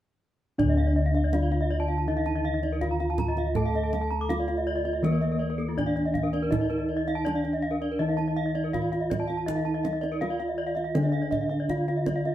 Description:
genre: Balinese gamelan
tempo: 81 BPM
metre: 4/4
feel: straight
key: D pelog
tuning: A4 = 440 Hz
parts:
  - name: gamelan-type bronze metallophone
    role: melody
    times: 0.6-12.3 s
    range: Bb3 to A4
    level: -30 LUFS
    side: right 1 dB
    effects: none
  - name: gamelan-type bronze metallophone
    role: accompaniment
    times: 0.6-12.3 s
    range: D3 to Bb3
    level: -37 LUFS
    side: right 1 dB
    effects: none
  - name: gamelan-type bronze metallophone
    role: arpeggios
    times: 0.6-12.3 s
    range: F4 to D6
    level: -33 LUFS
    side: left 3 dB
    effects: none
  - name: gamelan-type bossed gongs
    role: bass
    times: 0.6-12.3 s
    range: D2 to A4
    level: -28 LUFS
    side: left 1 dB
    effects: none
  - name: kendang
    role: percussion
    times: 0.6-12.3 s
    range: none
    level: -34 LUFS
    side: right 3 dB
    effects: none
  - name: gamelan-type bronze metallophone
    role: arpeggios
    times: 0.7-12.3 s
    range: A4 to Bb5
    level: -34 LUFS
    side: right 4 dB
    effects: none
room: moderate studio reverb, RT60 0.7 s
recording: band playing live in one room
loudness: -24 LUFS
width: side -12 dB against mid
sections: 0.6-12.3 A section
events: none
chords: none

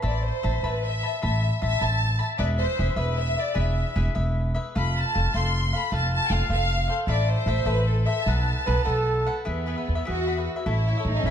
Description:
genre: mexican folk, mariachi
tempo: 102 BPM (dotted quarters)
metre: 6/8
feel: rubato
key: A harmonic minor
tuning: A4 = 439 Hz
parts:
  - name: dark trumpet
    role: second line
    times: 0.0, 8.7-9.4 s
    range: A4 to B4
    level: -28 LUFS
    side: right 3 dB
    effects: none
  - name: cavaquinho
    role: accompaniment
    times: 0.0-11.3 s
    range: D#4 to B5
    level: -32 LUFS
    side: left 3 dB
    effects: none
  - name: upright bass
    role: bass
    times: 0.0-11.3 s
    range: E1 to E2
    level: -24 LUFS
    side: equal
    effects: none
  - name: rich symphonic violin section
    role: melody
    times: 0.1-11.3 s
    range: B3 to C6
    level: -27 LUFS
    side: left 1 dB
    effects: none
room: moderate recital hall reverb, RT60 1.4 s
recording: dark, warm production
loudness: -22 LUFS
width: side -9 dB against mid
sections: 0.0-9.5 A section; 9.5-11.3 B section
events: none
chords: 0.0 Amadd9; 2.4 E; 4.8 F; 7.1 Am; 8.3 B7; 9.5 E; 10.7 A

